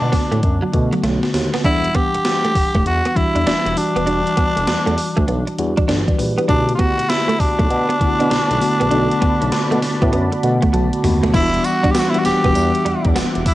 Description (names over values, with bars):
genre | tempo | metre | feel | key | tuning
R&B, new jack swing | 99 BPM | 4/4 | swing 64% on 16ths | E minor | A4 = 441 Hz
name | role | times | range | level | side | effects
raspy tenor saxophone | melody | 0.0-13.5 s | D4 to G4 | -20 LUFS | equal | cassette tape
mellow tine electric piano | accompaniment | 0.0-13.5 s | D3 to A5 | -21 LUFS | left 1 dB | medium stereo tremolo, cassette tape
smooth synth bass | bass | 0.0-13.4 s | D#1 to B2 | -22 LUFS | equal | none
direct-recorded clean electric guitar | riff | 0.1-13.5 s | F#3 to E4 | -22 LUFS | right 2 dB | ensemble chorus, cassette tape
gated 80s digital drum machine | drums | 0.1-13.5 s | crash cymbal, hi-hat, kick drum, snare drum, tambourine, toms | -20 LUFS | equal | gated reverb, gated reverb snare, overdrive, vintage 12-bit sampler grit, cassette tape
phased analog pad | sustained chords | 6.5-13.5 s | G3 to D6 | -27 LUFS | equal | phaser, chorus, cassette tape
room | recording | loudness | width
light reverb | home recording on cassette | -15 LUFS | side -16 dB against mid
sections
0.0-1.6 A section; 1.6-11.3 B section; 11.3-13.5 C section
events
drum fill 1.0-1.6, 10.7-11.3; tine electric piano fill 10.1-11.3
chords
0.0 Bm7; 1.6 Em9; 6.5 Bm7; 11.3 Em9